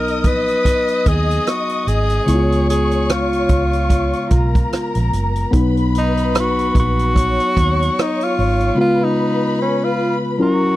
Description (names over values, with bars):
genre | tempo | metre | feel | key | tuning
lush 1970s-style soul | 74 BPM | 4/4 | swing 58% on 16ths | B lydian | A4 = 440 Hz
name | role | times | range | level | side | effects
breathy tenor saxophone | melody | 0.0-10.8 s | C#4 to B4 | -20 LUFS | equal | none
dark studio string section | second line | 0.0-10.8 s | A#4 to D#6 | -24 LUFS | left 3 dB | none
barky tine electric piano | accompaniment | 0.0-10.8 s | C#3 to A#4 | -20 LUFS | left 1 dB | overdrive
vintage muted fingered electric bass | bass | 0.0-8.7 s | F#1 to D#2 | -19 LUFS | right 1 dB | none
vintage drum kit | drums | 0.1-8.8 s | hi-hat, kick drum, rim click | -19 LUFS | right 1 dB | none
room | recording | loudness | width
small room ambience | dry, close 1970s-style studio recording | -14 LUFS | side -16 dB against mid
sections
0.0-10.8 A section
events
none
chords
0.0 Bmaj7; 2.3 C#7; 5.5 Bmaj7; 8.8 C#7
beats
0.66 1.47 | 2.28 3.09 3.91 4.72 | 5.53 6.34 7.16 7.97 | 8.78 9.59 10.40